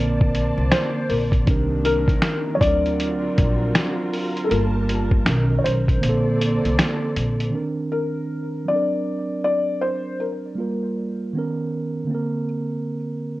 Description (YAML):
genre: lo-fi hip hop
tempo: 79 BPM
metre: 4/4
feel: swing 63% on 16ths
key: C dorian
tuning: A4 = 440 Hz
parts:
  - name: felt-muted upright piano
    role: melody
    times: 0.0-12.4 s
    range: A4 to D5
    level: -25 LUFS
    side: left 2 dB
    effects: low-pass filter
  - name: mellow tine electric piano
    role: accompaniment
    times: 0.0-13.4 s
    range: B2 to Bb4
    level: -24 LUFS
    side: right 2 dB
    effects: cassette tape, low-pass filter
  - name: dark studio string section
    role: sustained chords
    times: 0.0-7.5 s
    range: B2 to A5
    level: -31 LUFS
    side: left 1 dB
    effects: low-pass filter
  - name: upright bass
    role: bass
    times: 0.0-7.5 s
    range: G1 to D2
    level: -23 LUFS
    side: equal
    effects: none
  - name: lo-fi sampler-style drum kit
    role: drums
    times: 0.2-7.5 s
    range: finger snaps, hi-hat, kick drum, snare drum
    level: -21 LUFS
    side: equal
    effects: none
room: moderate studio reverb, RT60 0.7 s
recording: worn, warbling old tape, cassette tape, warbly pitch drift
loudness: -19 LUFS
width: side -18 dB against mid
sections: 0.0-7.5 A section; 7.5-13.4 B section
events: kick muted 6.0-7.5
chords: 0.0 Bbmaj9; 1.5 Cm9; 2.6 D7alt; 4.5 Gm9; 5.3 Bmaj9; 6.0 Bbmaj9; 7.5 Cm9; 8.7 Daug7; 10.6 Gm7; 11.3 Bmaj9; 12.1 Bbadd9